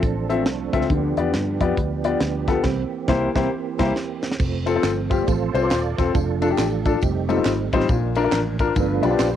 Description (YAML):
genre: uptempo gospel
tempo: 137 BPM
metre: 4/4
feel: swing 62% on 8ths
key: F major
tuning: A4 = 442 Hz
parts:
  - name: mellow electric guitar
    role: second line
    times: 0.0-3.9 s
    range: E3 to A4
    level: -30 LUFS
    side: right 8 dB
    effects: vibrato effect, cassette tape
  - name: tonewheel organ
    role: sustained chords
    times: 0.0-9.4 s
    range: E3 to F5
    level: -27 LUFS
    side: right 10 dB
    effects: slow rotary speaker, chorus vibrato, cassette tape
  - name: vintage muted fingered electric bass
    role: bass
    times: 0.0-9.4 s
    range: Eb1 to G2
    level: -26 LUFS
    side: equal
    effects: none
  - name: tight funk drum kit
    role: drums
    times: 0.0-9.3 s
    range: crash cymbal, hi-hat, kick drum, ride cymbal, snare drum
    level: -25 LUFS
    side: equal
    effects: none
  - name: warm upright piano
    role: accompaniment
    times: 0.3-9.4 s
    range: G2 to E5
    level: -22 LUFS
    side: left 6 dB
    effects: cassette tape
  - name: tambourine and handclaps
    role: percussion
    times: 4.4-9.3 s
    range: none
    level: -37 LUFS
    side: right 5 dB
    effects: none
room: light reverb, small room ambience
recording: home recording on cassette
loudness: -19 LUFS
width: side -10 dB against mid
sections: 0.0-4.4 A section; 4.4-9.4 B section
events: band accent 2.6-4.4; drum fill 3.5-4.4; tonewheel organ solo 4.4-9.4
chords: 0.0 Dm7; 0.9 G7/D; 2.6 C7; 4.4 F; 6.1 Dm/F; 7.0 F9; 7.9 Bb; 8.8 G7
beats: 0.02 0.46 | 0.90 1.34 1.77 2.21 | 2.65 3.09 3.52 3.96 | 4.40 4.83 5.27 5.71 | 6.14 6.58 7.01 7.45 | 7.89 8.32 8.76 9.19